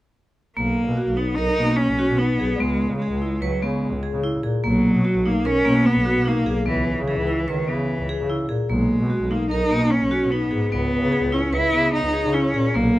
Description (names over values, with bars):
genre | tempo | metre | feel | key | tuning
contemporary instrumental, contemporary | 148 BPM | 5/4 | straight | B major | A4 = 440 Hz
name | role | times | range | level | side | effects
rich cello | melody | 0.6-13.0 s | D#3 to E4 | -22 LUFS | equal | none
vibraphone with hard mallets | arpeggios | 0.6-13.0 s | A#3 to B4 | -23 LUFS | equal | none
rich double bass | bass | 0.6-13.0 s | B1 to C#3 | -24 LUFS | equal | none
room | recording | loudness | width
light reverb | close, detailed microphones | -19 LUFS | side -16 dB against mid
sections
0.6-13.0 A section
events
none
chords
0.6 Bmaj7; 2.6 C#7(no3); 4.6 Bmaj7(no3); 6.7 C#m7; 8.7 Bmaj7; 10.7 C#7(no3)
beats
| 0.57 0.97 1.38 1.79 2.19 | 2.60 3.01 3.41 3.82 4.23 | 4.63 5.04 5.45 5.85 6.26 | 6.66 7.07 7.47 7.88 8.29 | 8.69 9.10 9.50 9.91 10.31 | 10.72 11.12 11.53 11.93 12.34 | 12.74